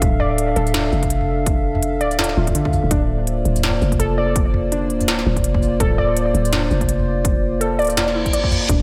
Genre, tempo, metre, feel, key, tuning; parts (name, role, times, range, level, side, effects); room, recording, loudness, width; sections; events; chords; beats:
half-time drum and bass; 166 BPM; 4/4; swing 58% on 16ths, half-time; A4 = 441 Hz
dark analog pad; sustained chords; 0.0-8.8 s; Bb3 to F5; -25 LUFS; equal; chorus, sidechain pumping
growling 808-style bass; bass; 0.0-8.8 s; D1 to F1; -24 LUFS; equal
electronic kick drum; drums; 0.0-8.8 s; -23 LUFS; equal
industrial drum kit; drums; 0.0-8.8 s; hi-hat, shaker, snare drum, toms; -25 LUFS; equal
warbly dusty pluck; arpeggios; 0.2-8.8 s; D3 to D5; -26 LUFS; equal; chorus, cassette tape, tape echo
reverse cymbal; sound effects; 8.1-8.7 s; -26 LUFS; equal
moderate lush hall reverb, RT60 1.6 s; dreamy mix soaked in reverb; -19 LUFS; mono
0.0-8.8 A section
reverse cymbal 8.1-8.7
0.0 Dm; 2.9 Bb/D
| 0.02 0.38 0.74 1.10 | 1.47 1.83 2.19 2.55 | 2.91 3.27 3.63 4.00 | 4.36 4.72 5.08 5.44 | 5.80 6.17 6.53 6.89 | 7.25 7.61 7.97 8.33 | 8.70